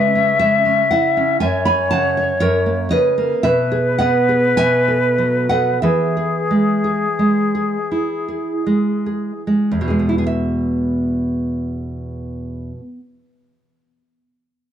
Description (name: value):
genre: romantic duo for flute and classical guitar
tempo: 36-61 BPM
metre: 3/4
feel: rubato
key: E major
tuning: A4 = 440 Hz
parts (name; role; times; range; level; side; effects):
- mellow hollow silver concert flute; melody; 0.0-9.4 s; G#4 to E5; -18 LUFS; left 3 dB; none
- nylon-string guitar; accompaniment; 0.0-13.2 s; E2 to B5; -17 LUFS; right 2 dB; none
room: small room ambience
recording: dry, close 1970s-style studio recording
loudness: -15 LUFS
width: side -9 dB against mid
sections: 0.0-10.3 A section; 10.3-14.7 B section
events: slowing down 0.9-10.3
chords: 0.0 C#m; 1.4 F#m7; 2.4 F#; 3.4 E/B; 4.6 B7; 5.8 E